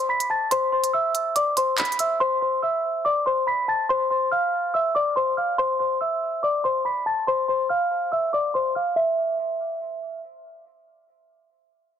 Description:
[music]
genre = hip hop, drill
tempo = 142 BPM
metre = 4/4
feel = half-time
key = unclear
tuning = A4 = 441 Hz
[part]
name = celesta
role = melody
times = 0.0-10.2 s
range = C5 to B6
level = -21 LUFS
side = left 1 dB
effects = low-pass filter, tape echo
[part]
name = drill drum kit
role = drums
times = 0.2-2.1 s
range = handclaps, hi-hat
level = -26 LUFS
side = right 2 dB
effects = none
[sound]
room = light reverb, studio ambience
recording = dense, heavily limited modern master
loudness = -21 LUFS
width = side -9 dB against mid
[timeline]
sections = 0.0-9.0 A section; 9.0-12.0 B section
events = break 0.0-2.2; filter sweep on celesta 0.0-9.0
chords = 0.0 Amadd9 (rootless); 2.2 Dm7; 9.0 N.C.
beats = 0.09 | 0.51 0.94 1.36 1.78 | 2.20 2.62 3.05 3.47 | 3.89 4.32 4.74 5.16 | 5.58 6.00 6.43 6.85 | 7.27 7.70 8.12 8.54 | 8.96 9.39 9.81

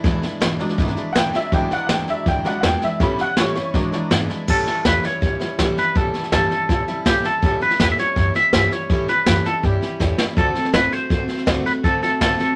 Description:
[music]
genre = rockabilly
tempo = 163 BPM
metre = 4/4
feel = straight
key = A mixolydian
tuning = A4 = 440 Hz
[part]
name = picked steel-string acoustic guitar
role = accompaniment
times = 0.0-12.6 s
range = E2 to F#4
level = -27 LUFS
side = equal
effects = none
[part]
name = upright bass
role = bass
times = 0.0-12.4 s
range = G1 to A2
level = -29 LUFS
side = equal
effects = none
[part]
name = jazz brush drum kit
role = drums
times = 0.0-12.4 s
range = crash cymbal, hi-hat, kick drum, snare drum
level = -23 LUFS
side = equal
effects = none
[part]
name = honky-tonk upright piano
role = accompaniment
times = 0.6-4.3 s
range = F#3 to B5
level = -25 LUFS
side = equal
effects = none
[part]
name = twangy electric guitar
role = melody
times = 4.5-12.6 s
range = G4 to E5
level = -23 LUFS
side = equal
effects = harmonic tremolo
[sound]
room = moderate studio reverb, RT60 0.5 s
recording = none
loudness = -19 LUFS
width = mono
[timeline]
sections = 0.0-4.5 A section; 4.5-12.6 B section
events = honky-tonk piano solo 0.0-4.5; drum fill 10.0-10.4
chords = 0.0 E7; 3.0 A7; 3.7 E7; 4.5 A7; 10.4 D7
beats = | 0.04 0.41 0.78 1.15 | 1.52 1.89 2.26 2.63 | 3.00 3.37 3.74 4.11 | 4.48 4.85 5.22 5.59 | 5.96 6.33 6.69 7.06 | 7.43 7.80 8.17 8.53 | 8.90 9.27 9.63 10.00 | 10.37 10.74 11.11 11.47 | 11.84 12.21

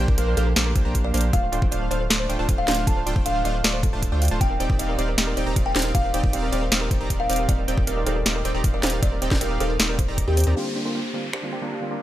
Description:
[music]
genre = future bass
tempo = 156 BPM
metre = 4/4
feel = half-time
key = unclear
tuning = A4 = 441 Hz
[part]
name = kalimba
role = melody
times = 0.0-10.5 s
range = G4 to A5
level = -29 LUFS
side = equal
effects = vintage 12-bit sampler grit, sidechain pumping, digital delay
[part]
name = thumb-piano-like synth pluck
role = arpeggios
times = 0.0-10.5 s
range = G4 to A5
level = -34 LUFS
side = right 2 dB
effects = chorus, sidechain pumping, digital delay
[part]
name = supersaw stab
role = riff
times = 0.0-12.0 s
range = A3 to Bb5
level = -28 LUFS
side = right 1 dB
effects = sidechain pumping, low-pass filter
[part]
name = saturated sub bass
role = bass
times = 0.0-10.5 s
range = D1 to Eb2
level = -25 LUFS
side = equal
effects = sidechain pumping
[part]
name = electronic kick drum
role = drums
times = 0.1-10.3 s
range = none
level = -22 LUFS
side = equal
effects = small room reverb
[part]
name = trap drum kit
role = drums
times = 0.2-11.4 s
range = finger snaps, hi-hat, snare drum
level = -24 LUFS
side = equal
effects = small room reverb
[part]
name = tine electric piano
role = accompaniment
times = 10.6-12.0 s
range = D3 to F4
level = -31 LUFS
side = right 1 dB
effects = lush chorus, sidechain pumping, digital delay
[part]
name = downlifter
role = sound effects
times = 10.6-12.0 s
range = none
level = -33 LUFS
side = equal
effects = none
[sound]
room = digital ambience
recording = none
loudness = -20 LUFS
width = side -13 dB against mid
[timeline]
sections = 0.0-10.6 A section; 10.6-12.0 B section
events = drop 0.0-10.6; filter sweep on supersaw synth 10.6-12.0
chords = 0.0 Bb69; 1.3 Dm7; 4.4 Ebmaj13; 10.6 Bb69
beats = 0.18 0.56 0.95 | 1.33 1.72 2.10 2.49 | 2.87 3.26 3.64 4.03 | 4.41 4.80 5.18 5.57 | 5.95 6.33 6.72 7.10 | 7.49 7.87 8.26 8.64 | 9.03 9.41 9.80 10.18 | 10.56 10.95 11.33 11.72

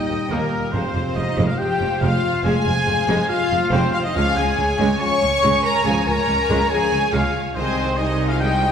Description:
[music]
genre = cinematic, heroic adventure film score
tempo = 141 BPM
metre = 4/4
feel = straight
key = unclear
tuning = A4 = 441 Hz
[part]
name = warm symphonic violin section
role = melody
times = 0.0-8.7 s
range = Bb4 to Db6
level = -28 LUFS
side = left 3 dB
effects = none
[part]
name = clear symphonic violin section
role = second line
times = 0.0-8.7 s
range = C5 to Ab5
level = -30 LUFS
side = left 1 dB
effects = none
[part]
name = large flute ensemble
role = second line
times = 0.0-8.7 s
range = Bb4 to Db6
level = -30 LUFS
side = left 1 dB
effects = none
[part]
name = mellow oboe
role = second line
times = 0.0-8.7 s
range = Bb4 to Db6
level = -28 LUFS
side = equal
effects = none
[part]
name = dark trombone section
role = sustained chords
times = 0.0-8.5 s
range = Bb2 to Ab3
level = -30 LUFS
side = right 1 dB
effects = none
[part]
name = warm French horn section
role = sustained chords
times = 0.0-8.7 s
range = Bb3 to Db5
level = -24 LUFS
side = left 3 dB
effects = none
[part]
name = clear trumpet section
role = stabs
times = 0.0-8.7 s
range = Bb4 to Db6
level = -26 LUFS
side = right 1 dB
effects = none
[part]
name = rich symphonic viola section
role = accompaniment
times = 0.1-8.7 s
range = Ab3 to G4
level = -28 LUFS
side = equal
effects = none
[part]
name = clear studio double bass section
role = bass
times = 0.1-8.7 s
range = F1 to Eb2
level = -25 LUFS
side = right 2 dB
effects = none
[part]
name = rich symphonic cello section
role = bass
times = 0.1-8.7 s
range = C2 to F2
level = -25 LUFS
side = right 1 dB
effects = none
[sound]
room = wet recital hall reverb, RT60 1.5 s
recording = recorded in a church or concert hall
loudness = -17 LUFS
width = side -8 dB against mid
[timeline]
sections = 0.0-8.7 A section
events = none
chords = 0.0 Eb; 0.7 Fm; 4.2 Db; 7.5 Ab/C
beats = 0.31 | 0.73 1.16 1.59 2.02 | 2.45 2.87 3.30 3.73 | 4.15 4.58 5.00 5.43 | 5.85 6.28 6.70 7.13 | 7.55 7.97 8.40

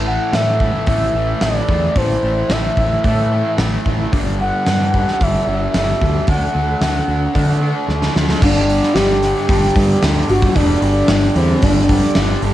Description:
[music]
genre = rock, shoegaze and dream pop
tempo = 112 BPM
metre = 4/4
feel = straight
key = unclear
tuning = A4 = 440 Hz
[part]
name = fuzz guitar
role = riff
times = 0.0-12.5 s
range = G2 to D4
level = -20 LUFS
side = equal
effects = distortion, wide subtle chorus, cassette tape
[part]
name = growling fingered electric bass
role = bass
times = 0.0-12.5 s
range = E1 to D3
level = -19 LUFS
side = equal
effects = overdrive
[part]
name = reedy FM lead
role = melody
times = 0.1-12.2 s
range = C4 to F#5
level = -19 LUFS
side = equal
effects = chorus, cassette tape, analog delay
[part]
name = gated 80s drum kit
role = drums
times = 0.3-12.5 s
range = crash cymbal, hi-hat, kick drum, snare drum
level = -19 LUFS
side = equal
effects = cassette tape
[sound]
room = little or no reverb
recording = home recording on cassette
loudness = -13 LUFS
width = side -13 dB against mid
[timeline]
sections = 0.0-8.4 A section; 8.4-12.5 B section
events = drum fill 7.9-8.4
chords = 0.0 A5; 4.1 G5; 6.3 D; 8.4 G5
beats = 0.34 0.88 1.42 | 1.96 2.50 3.04 3.58 | 4.12 4.66 5.20 5.74 | 6.28 6.82 7.35 7.89 | 8.42 8.96 9.49 10.03 | 10.56 11.09 11.62 12.16

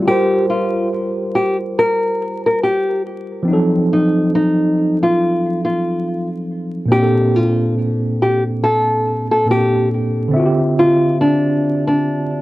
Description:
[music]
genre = hip hop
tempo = 70 BPM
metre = 4/4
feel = swing 57% on 16ths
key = unclear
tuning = A4 = 435 Hz
[part]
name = tine electric piano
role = accompaniment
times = 0.0-12.4 s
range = Bb2 to E5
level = -18 LUFS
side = equal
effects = medium stereo tremolo, cassette tape, low-pass filter
[part]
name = nylon-string guitar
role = melody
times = 0.1-12.4 s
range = D4 to Bb4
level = -16 LUFS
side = left 1 dB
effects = low-pass filter
[sound]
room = light reverb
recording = dry, gritty hardware recording, vinyl crackle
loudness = -14 LUFS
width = side -17 dB against mid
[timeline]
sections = 0.0-12.4 A section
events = none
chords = 0.0 Gm7; 3.5 F7b9; 6.9 Bbmaj9; 10.3 Dm11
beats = | 0.04 0.90 1.76 2.62 | 3.47 4.33 5.19 6.04 | 6.90 7.76 8.62 9.47 | 10.33 11.19 12.04

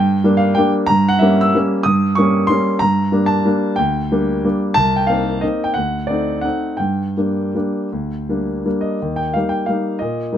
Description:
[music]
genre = classical, piano waltz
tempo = 157-198 BPM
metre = 3/4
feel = rubato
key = G minor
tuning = A4 = 440 Hz
[part]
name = warm grand piano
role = solo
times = 0.0-10.4 s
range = C2 to E6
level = -15 LUFS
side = equal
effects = none
[sound]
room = little or no reverb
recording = close, detailed microphones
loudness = -15 LUFS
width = side -10 dB against mid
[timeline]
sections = 0.0-9.0 A section; 9.0-10.4 A section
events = none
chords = 0.0 Gm; 0.9 Gdim7; 2.8 Gm; 4.8 Cm7; 5.8 D7b9; 6.8 Gm; 9.0 Eb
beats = 0.24 0.57 | 0.89 1.21 1.54 | 1.85 2.17 2.49 | 2.81 3.13 3.46 | 3.79 4.11 4.44 | 4.76 5.09 5.43 | 5.76 6.09 6.44 | 6.80 7.17 7.55 | 7.92 8.28 8.65 | 9.02 9.35 9.68 | 10.01 10.33

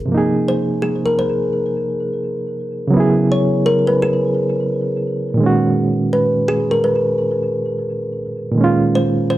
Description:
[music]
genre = hip hop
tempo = 85 BPM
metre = 4/4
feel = swing 62% on 16ths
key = F minor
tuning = A4 = 440 Hz
[part]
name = bright reed electric piano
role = accompaniment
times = 0.0-9.4 s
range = Bb2 to Ab4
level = -17 LUFS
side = right 2 dB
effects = fast tremolo, cassette tape
[part]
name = kalimba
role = melody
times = 0.5-9.4 s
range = Ab4 to Db5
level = -19 LUFS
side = left 1 dB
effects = tape echo, plate reverb
[sound]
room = moderate studio reverb, RT60 0.5 s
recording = dark, warm production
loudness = -15 LUFS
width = side -14 dB against mid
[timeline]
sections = 0.1-9.4 A section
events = none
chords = 0.1 Fm7; 2.9 Dbm7; 5.4 Abm11; 8.6 Bbm7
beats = | 0.11 0.81 1.52 2.22 | 2.93 3.64 4.34 5.05 | 5.75 6.46 7.17 7.87 | 8.58 9.28

